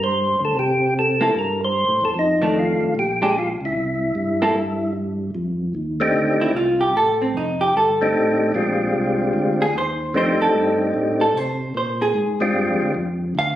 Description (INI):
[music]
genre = soul jazz organ trio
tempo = 150 BPM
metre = 4/4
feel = swing 65% on 8ths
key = F mixolydian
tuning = A4 = 440 Hz
[part]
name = percussive tonewheel organ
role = melody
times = 0.0-12.9 s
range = Ab3 to C5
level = -20 LUFS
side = equal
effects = slow rotary speaker, overdrive, plate reverb
[part]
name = tonewheel organ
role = bass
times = 0.0-13.6 s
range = F1 to C3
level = -26 LUFS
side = equal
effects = overdrive, chorus vibrato, slow rotary speaker
[part]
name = vintage hollow-body jazz guitar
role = accompaniment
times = 1.2-13.6 s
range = Eb3 to F5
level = -19 LUFS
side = right 1 dB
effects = none
[sound]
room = moderate studio reverb, RT60 0.8 s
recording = recorded on a phone in the room, studio reverb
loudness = -18 LUFS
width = side -12 dB against mid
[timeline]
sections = 0.0-5.3 A section; 5.3-13.6 B section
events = hollow-body jazz guitar solo 5.3-13.6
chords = 0.0 C13; 2.1 F6; 2.9 Bb6; 3.7 C; 5.3 F13; 8.5 Bb13; 10.1 F13; 11.7 Bb13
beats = 0.14 | 0.55 0.95 1.35 1.75 | 2.15 2.55 2.95 3.35 | 3.75 4.15 4.55 4.95 | 5.35 5.75 6.15 6.55 | 6.95 7.35 7.75 8.14 | 8.54 8.95 9.35 9.74 | 10.14 10.54 10.95 11.35 | 11.75 12.15 12.55 12.95 | 13.35